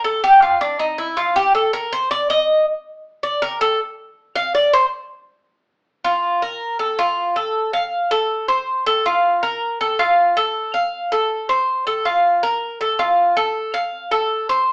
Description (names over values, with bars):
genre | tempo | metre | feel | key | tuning
latin | 160 BPM | 4/4 | straight | unclear | A4 = 440 Hz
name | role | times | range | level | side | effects
Cuban tres | solo | 0.0-14.7 s | D4 to F5 | -16 LUFS | equal | none
room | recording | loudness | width
moderate studio reverb, RT60 0.8 s | AM radio sound | -16 LUFS | side -39 dB against mid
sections
0.0-6.0 A section; 6.0-14.7 B section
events
Cuban tres solo 0.0-6.0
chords
none